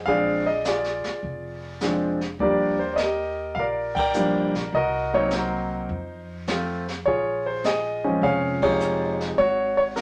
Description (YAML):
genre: jazz piano trio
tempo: 103 BPM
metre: 4/4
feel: swing 69% on 8ths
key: unclear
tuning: A4 = 440 Hz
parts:
  - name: warm baby grand piano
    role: melody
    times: 0.0-10.0 s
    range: C3 to G5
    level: -25 LUFS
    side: equal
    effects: none
  - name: upright bass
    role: bass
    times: 0.0-10.0 s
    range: F1 to F2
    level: -38 LUFS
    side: equal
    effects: none
  - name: jazz brush drum kit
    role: drums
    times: 0.1-10.0 s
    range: brushed snare drum, hi-hat, kick drum, ride cymbal, snare drum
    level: -36 LUFS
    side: equal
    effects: none
room: moderate studio reverb, RT60 0.6 s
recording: none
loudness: -24 LUFS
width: mono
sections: 0.0-10.0 A section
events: band accent 3.9, 8.5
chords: 0.1 Bb7; 2.4 Ebmaj7; 4.7 Cm7b5; 5.9 F7; 7.1 Bbm7; 9.4 Ab7(no3)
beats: | 0.06 0.65 1.23 1.81 | 2.40 2.98 3.56 4.14 | 4.73 5.31 5.89 6.47 | 7.06 7.64 8.22 8.80 | 9.38 9.96